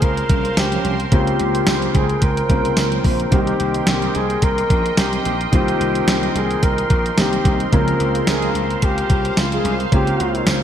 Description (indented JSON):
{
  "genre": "1980s-style pop",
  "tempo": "109 BPM",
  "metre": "4/4",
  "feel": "swing 55% on 16ths",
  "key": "Bb dorian",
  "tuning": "A4 = 439 Hz",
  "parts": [
    { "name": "breathy flugelhorn", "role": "melody", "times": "0.0-10.5 s", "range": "F4 to Bb4", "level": "-23 LUFS", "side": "equal", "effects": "ping-pong delay" },
    { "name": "warm concert grand piano", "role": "accompaniment", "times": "0.0-10.6 s", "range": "Db3 to G4", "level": "-23 LUFS", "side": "left 1 dB", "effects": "none" },
    { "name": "sweeping resonant pad", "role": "sustained chords", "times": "0.0-10.6 s", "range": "Bb4 to C6", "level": "-26 LUFS", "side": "right 3 dB", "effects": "chorus" },
    { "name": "slap bass", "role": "bass", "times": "0.0-10.6 s", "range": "Bb1 to Db2", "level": "-23 LUFS", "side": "equal", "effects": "none" },
    { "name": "clean 12-bit digital drum machine", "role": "drums", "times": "0.0-10.6 s", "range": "hi-hat, kick drum, snare drum, tambourine", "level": "-19 LUFS", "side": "equal", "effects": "gated reverb" },
    { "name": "mellow synth brass", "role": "stabs", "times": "0.3-9.8 s", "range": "Db3 to Bb4", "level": "-28 LUFS", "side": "right 2 dB", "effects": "chorus, ping-pong delay" }
  ],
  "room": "moderate lush hall reverb, RT60 1.8 s",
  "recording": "bright 1980s-style digital production",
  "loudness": "-15 LUFS",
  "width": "side -9 dB against mid",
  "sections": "0.0-10.6 A section",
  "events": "none",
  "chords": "0.0 Bbmadd9; 3.3 Cm7; 7.7 Bbmadd9"
}